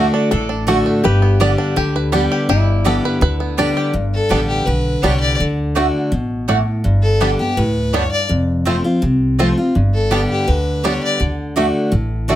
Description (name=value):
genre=bluegrass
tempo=165 BPM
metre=4/4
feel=straight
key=G major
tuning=A4 = 439 Hz
part: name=bluegrass banjo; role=melody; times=0.0-12.4 s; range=G3 to D5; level=-22 LUFS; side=right 3 dB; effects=none
part: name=lap resonator guitar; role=second line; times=0.0-3.9 s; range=D4 to A4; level=-24 LUFS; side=left 5 dB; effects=none
part: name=picked steel-string acoustic guitar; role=accompaniment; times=0.0-12.4 s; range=F2 to G4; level=-18 LUFS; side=equal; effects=none
part: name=mandolin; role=stabs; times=0.0-12.4 s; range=A3 to A5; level=-21 LUFS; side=right 4 dB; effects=none
part: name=upright bass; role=bass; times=0.0-12.4 s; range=F1 to D2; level=-19 LUFS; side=equal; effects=none
part: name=clear fiddle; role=melody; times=4.1-11.2 s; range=G4 to D5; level=-20 LUFS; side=left 2 dB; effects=none
room=light reverb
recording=close, detailed microphones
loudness=-14 LUFS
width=side -13 dB against mid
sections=0.0-3.9 A section; 3.9-12.4 B section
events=five-string banjo solo 0.0-3.9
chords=0.0 D; 1.0 Gadd9; 5.4 D; 6.8 Gadd9; 8.3 F; 9.7 Gadd9; 11.2 D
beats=0.32 0.68 | 1.04 1.40 1.77 2.13 | 2.49 2.85 3.22 3.58 | 3.94 4.31 4.67 5.03 | 5.39 5.76 6.12 6.48 | 6.85 7.21 7.57 7.94 | 8.30 8.66 9.02 9.39 | 9.75 10.11 10.47 10.84 | 11.20 11.56 11.92 12.29